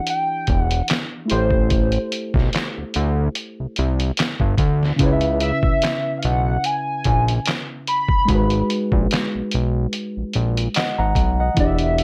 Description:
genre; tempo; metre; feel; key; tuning
R&B, neo-soul; 73 BPM; 4/4; swing 54% on 16ths; unclear; A4 = 440 Hz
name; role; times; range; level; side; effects
hollow square lead; melody; 0.0-12.0 s; C5 to B5; -25 LUFS; equal; chorus, slapback echo, plate reverb
mellow reed electric piano; accompaniment; 0.0-12.0 s; C#3 to A#5; -27 LUFS; equal; none
lo-fi sampler-style drum kit; drums; 0.1-12.0 s; handclaps, hi-hat, kick drum, snare drum; -24 LUFS; equal; none
fat analog bass; bass; 0.5-12.0 s; E1 to D2; -22 LUFS; equal; none
room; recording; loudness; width
light reverb; none; -20 LUFS; mono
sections
0.0-12.0 A section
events
none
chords
0.0 Em7; 1.3 Am7; 5.0 C#m7; 8.3 G#m9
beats
0.07 0.89 | 1.71 2.53 3.35 4.17 | 5.00 5.82 6.64 7.46 | 8.28 9.11 9.93 10.75 | 11.57

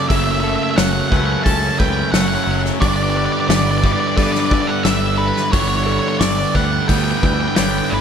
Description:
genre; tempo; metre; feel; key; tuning
post-rock; 88 BPM; 4/4; straight; G lydian; A4 = 440 Hz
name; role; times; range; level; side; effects
octave-fuzz lead guitar; melody; 0.0-8.0 s; B4 to A5; -21 LUFS; right 2 dB; distortion, slapback echo
pedal harmonium; sustained chords; 0.0-8.0 s; C#3 to B4; -32 LUFS; equal; none
direct-recorded clean electric guitar; arpeggios; 0.0-8.0 s; A4 to C#6; -29 LUFS; right 3 dB; slapback echo
twangy electric guitar; arpeggios; 0.0-8.0 s; F#2 to C#4; -28 LUFS; left 4 dB; vibrato effect, slapback echo
cranked stack guitar; riff; 0.0-8.0 s; F#2 to D4; -24 LUFS; left 13 dB; overdrive
thick fuzz guitar; riff; 0.0-8.0 s; F#2 to G3; -22 LUFS; right 11 dB; distortion
growling fingered electric bass; bass; 0.1-8.0 s; F#1 to G2; -22 LUFS; equal; overdrive
loose indie drum kit; drums; 0.1-7.7 s; hi-hat, kick drum, snare drum; -20 LUFS; left 1 dB; none
room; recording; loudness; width
studio ambience; none; -14 LUFS; side -7 dB against mid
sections
0.0-8.0 A section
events
none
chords
0.0 F#m; 2.8 G6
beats
| 0.10 0.77 1.45 2.13 | 2.81 3.49 4.17 4.85 | 5.53 6.21 6.88 7.57

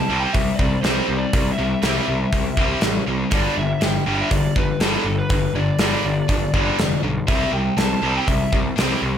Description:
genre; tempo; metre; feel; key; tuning
hard rock; 121 BPM; 4/4; straight; unclear; A4 = 440 Hz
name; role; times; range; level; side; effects
lead guitar through a small cranked amp; melody; 0.0-8.5 s; A4 to A5; -26 LUFS; left 2 dB; overdrive
high-gain distorted guitar; riff; 0.0-9.2 s; G2 to C4; -24 LUFS; left 8 dB; distortion
tight distorted guitar; riff; 0.0-9.2 s; G2 to C4; -26 LUFS; right 11 dB; distortion
fuzz picked electric bass; bass; 0.1-9.2 s; F1 to C2; -24 LUFS; equal; overdrive
gated 80s drum kit; drums; 0.3-8.9 s; hi-hat, kick drum, snare drum; -22 LUFS; equal; none
room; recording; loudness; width
small room reverb; none; -17 LUFS; side -9 dB against mid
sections
0.0-9.2 A section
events
none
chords
0.0 C; 3.3 G5; 7.3 C5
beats
0.34 0.83 | 1.33 1.82 2.32 2.82 | 3.31 3.81 4.30 4.80 | 5.30 5.79 6.29 6.79 | 7.28 7.78 8.28 8.77

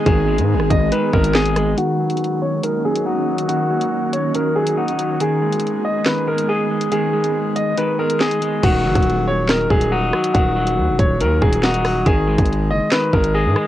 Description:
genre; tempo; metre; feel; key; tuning
hip hop, drill; 140 BPM; 4/4; half-time; Eb minor; A4 = 440 Hz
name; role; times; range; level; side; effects
clear concert grand piano; melody; 0.0-13.7 s; Gb4 to Eb5; -20 LUFS; equal; low-pass filter, analog delay
electric guitar at the edge of break-up; accompaniment; 0.0-13.7 s; Eb3 to Eb5; -22 LUFS; left 2 dB; low-pass filter, cassette tape
ethereal airy pad; sustained chords; 0.0-8.6 s; Eb3 to Ab4; -25 LUFS; right 2 dB; ensemble chorus, built-in reverb, low-pass filter, cassette tape
distorted 808-style bass; bass; 0.1-1.7, 8.6-13.6 s; Eb1 to Ab2; -20 LUFS; equal; distortion
drill drum kit; drums; 0.1-13.7 s; crash cymbal, handclaps, hi-hat, kick drum, rim click, snare drum; -19 LUFS; equal; cassette tape
room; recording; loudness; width
light reverb; home recording on cassette; -16 LUFS; side -13 dB against mid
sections
0.0-1.8 A section; 1.8-8.6 B section; 8.6-13.7 A section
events
filter sweep 1.8-8.6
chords
0.0 Abm; 1.8 Ebm7; 5.2 Abm; 8.6 Ebm; 12.1 Ab5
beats
| 0.06 0.49 0.92 1.35 | 1.77 2.20 2.63 3.06 | 3.49 3.92 4.35 4.78 | 5.20 5.63 6.06 6.49 | 6.92 7.35 7.78 8.20 | 8.63 9.06 9.49 9.92 | 10.35 10.78 11.20 11.63 | 12.06 12.49 12.92 13.35

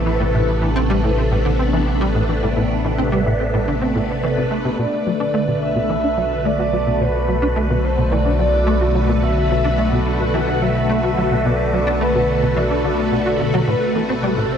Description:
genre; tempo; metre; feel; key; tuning
ambient; 108 BPM; 4/4; straight; unclear; A4 = 440 Hz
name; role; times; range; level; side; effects
phased string machine; sustained chords; 0.0-14.6 s; B2 to B4; -20 LUFS; equal; ensemble chorus, phaser
fat analog bass; bass; 0.0-14.6 s; A1 to B1; -22 LUFS; equal; none
bubbling stepped-filter texture; texture; 0.0-14.6 s; A3 to A4; -31 LUFS; equal; chorus, built-in reverb
tight sequencer bass; riff; 0.1-14.4 s; A2 to F#4; -22 LUFS; equal; ensemble chorus, analog delay
breathy flute-like synth lead; melody; 4.8-14.6 s; A4 to F#5; -22 LUFS; equal; lush chorus, analog delay
room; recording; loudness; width
moderate plate reverb, RT60 3.2 s; dreamy mix soaked in reverb; -16 LUFS; side -8 dB against mid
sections
0.0-14.6 A section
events
none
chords
0.0 Amadd9; 4.8 Bm7; 13.7 Amadd9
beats
| 0.34 0.90 1.45 2.01 | 2.56 3.12 3.68 4.23 | 4.79 5.34 5.90 6.45 | 7.01 7.57 8.12 8.68 | 9.23 9.79 10.34 10.90 | 11.45 12.01 12.56 13.12 | 13.68 14.23

